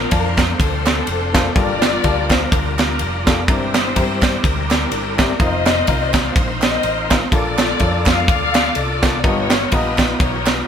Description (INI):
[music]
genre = uptempo gospel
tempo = 125 BPM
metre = 4/4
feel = swing 56% on 8ths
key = Bb major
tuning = A4 = 439 Hz
[part]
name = warm studio string section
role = melody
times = 0.0-10.7 s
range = C4 to F5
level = -22 LUFS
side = left 4 dB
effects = none
[part]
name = warm upright piano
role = accompaniment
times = 0.0-10.3 s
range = G2 to A#5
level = -24 LUFS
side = left 3 dB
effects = none
[part]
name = bright tonewheel organ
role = sustained chords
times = 0.0-10.7 s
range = F3 to D#5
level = -26 LUFS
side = right 2 dB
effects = slow rotary speaker, overdrive, chorus vibrato
[part]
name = hollow-body short-scale fingered electric bass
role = bass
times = 0.0-10.6 s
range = F1 to G2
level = -24 LUFS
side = equal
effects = none
[part]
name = crisp fusion drum kit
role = drums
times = 0.1-10.6 s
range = kick drum, ride cymbal, snare drum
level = -17 LUFS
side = right 1 dB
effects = none
[part]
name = group handclap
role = percussion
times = 0.4-10.6 s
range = none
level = -27 LUFS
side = right 4 dB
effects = none
[sound]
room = moderate studio reverb, RT60 0.6 s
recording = band playing live in one room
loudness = -14 LUFS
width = side -8 dB against mid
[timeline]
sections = 0.0-10.7 A section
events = none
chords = 0.0 Bbmaj9; 1.6 Gm9; 3.5 C9/G; 5.4 F7sus4; 7.3 Bbmaj7; 9.2 G7alt